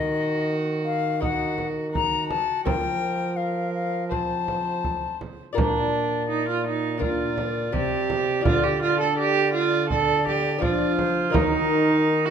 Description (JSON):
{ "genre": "classical, renaissance-style consort dance", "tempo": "83 BPM", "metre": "4/4", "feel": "straight", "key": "Bb major", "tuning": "A4 = 440 Hz", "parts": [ { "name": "bright silver concert flute", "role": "melody", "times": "0.0-12.3 s", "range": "Bb4 to Bb5", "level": "-28 LUFS", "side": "left 8 dB", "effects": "none" }, { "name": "rich viola", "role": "second line", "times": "0.0-12.3 s", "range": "D4 to C5", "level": "-25 LUFS", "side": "right 7 dB", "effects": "none" }, { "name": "lute", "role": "accompaniment", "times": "0.0-12.3 s", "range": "Bb2 to Eb5", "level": "-30 LUFS", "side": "left 7 dB", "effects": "none" }, { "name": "warm trombone", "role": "bass", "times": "0.0-12.3 s", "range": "Bb2 to F3", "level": "-28 LUFS", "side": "right 2 dB", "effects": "none" }, { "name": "frame drum", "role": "percussion", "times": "1.2-11.7 s", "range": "none", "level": "-28 LUFS", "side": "right 3 dB", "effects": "none" } ], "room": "moderate recital hall reverb, RT60 1.5 s", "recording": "close, detailed microphones", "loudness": "-21 LUFS", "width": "side -7 dB against mid", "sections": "0.0-5.6 A section; 5.6-12.3 A section", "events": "none", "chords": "0.0 Ebm; 2.7 Fsus4; 4.1 F; 5.6 Bb; 8.5 Dm; 11.3 Ebm" }